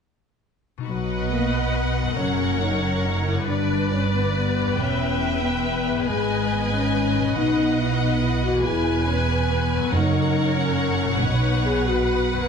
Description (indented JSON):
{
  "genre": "cinematic",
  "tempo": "93 BPM (dotted quarters)",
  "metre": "12/8",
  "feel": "straight",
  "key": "B major",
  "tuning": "A4 = 440 Hz",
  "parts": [
    { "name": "concert harp", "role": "arpeggios", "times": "0.8-12.5 s", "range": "E2 to B4", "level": "-31 LUFS", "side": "left 8 dB", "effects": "none" },
    { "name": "warm symphonic violin section", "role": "melody", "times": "0.9-12.5 s", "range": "D5 to G#5", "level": "-30 LUFS", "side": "left 3 dB", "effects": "none" },
    { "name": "warm studio violin section", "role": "second line", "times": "0.9-12.5 s", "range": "B4 to E5", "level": "-30 LUFS", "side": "left 1 dB", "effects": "none" },
    { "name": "warm symphonic viola section", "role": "accompaniment", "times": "0.9-12.5 s", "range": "A#4 to B4", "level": "-30 LUFS", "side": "equal", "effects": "none" },
    { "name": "dark French horn section", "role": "sustained chords", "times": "0.9-12.5 s", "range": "F#3 to B4", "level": "-25 LUFS", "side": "left 5 dB", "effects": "none" },
    { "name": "rich symphonic cello section", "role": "bass", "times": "0.9-12.5 s", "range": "E2 to B2", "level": "-28 LUFS", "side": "right 3 dB", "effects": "none" },
    { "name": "warm symphonic double bass section", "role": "bass", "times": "0.9-12.5 s", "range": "E1 to B1", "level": "-26 LUFS", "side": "right 4 dB", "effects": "none" },
    { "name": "timpani", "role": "percussion", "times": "7.4-10.5 s", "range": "F#2 to B2", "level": "-28 LUFS", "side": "right 4 dB", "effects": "none" }
  ],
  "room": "moderate scoring stage reverb, RT60 1.7 s",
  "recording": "none",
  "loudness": "-20 LUFS",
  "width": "side -6 dB against mid",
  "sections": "0.9-12.5 A section",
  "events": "none",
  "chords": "0.9 B; 2.2 F#; 3.5 G; 4.8 Em; 6.1 G#m; 7.4 B; 8.7 E; 9.9 F#; 11.2 B"
}